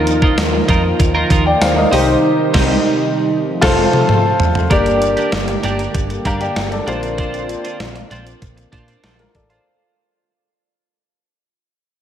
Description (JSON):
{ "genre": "1980s-style pop", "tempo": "97 BPM", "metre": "4/4", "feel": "straight", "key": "Bb major", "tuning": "A4 = 440 Hz", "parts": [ { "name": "clear concert grand piano", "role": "accompaniment", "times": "0.0-9.8 s", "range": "Bb3 to Bb5", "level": "-17 LUFS", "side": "left 1 dB", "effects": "slapback echo" }, { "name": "brassy analog pad", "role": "sustained chords", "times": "0.0-9.6 s", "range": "C3 to G4", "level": "-21 LUFS", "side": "right 2 dB", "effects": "chorus" }, { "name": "twelve-string electric guitar", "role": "riff", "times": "0.0-9.7 s", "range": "Bb3 to C5", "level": "-23 LUFS", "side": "right 2 dB", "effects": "lush chorus, digital delay" }, { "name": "vintage muted picked electric bass", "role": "bass", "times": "0.0-9.6 s", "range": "F1 to Bb2", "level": "-22 LUFS", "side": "equal", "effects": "none" }, { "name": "clean 12-bit digital drum machine", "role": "drums", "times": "0.1-9.6 s", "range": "crash cymbal, hi-hat, kick drum, snare drum, tambourine, toms", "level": "-18 LUFS", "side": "equal", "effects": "none" } ], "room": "wet lush hall reverb, RT60 2.9 s", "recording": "big arena sound", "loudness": "-13 LUFS", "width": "side -10 dB against mid", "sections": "0.0-4.7 A section; 4.7-9.7 B section", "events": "band accent 2.2-4.7; drum fill 3.5-4.7; fade-out 4.7-9.7", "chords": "0.0 Ebsus2; 1.9 Cm; 3.5 F; 4.7 Gm; 6.9 Bbadd9" }